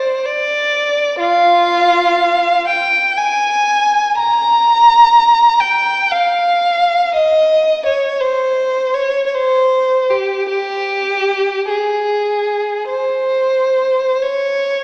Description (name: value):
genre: classical, free, expressive piece for unaccompanied violin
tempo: 37-65 BPM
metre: 3/4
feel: rubato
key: F minor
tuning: A4 = 439 Hz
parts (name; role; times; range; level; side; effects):
- clear violin; solo; 0.0-14.8 s; F4 to Bb5; -11 LUFS; equal; none
room: wet concert hall reverb, RT60 1.8 s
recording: heard from further back in the room, vinyl crackle, small speaker sound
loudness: -11 LUFS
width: side -26 dB against mid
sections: 0.0-14.2 A section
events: none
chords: none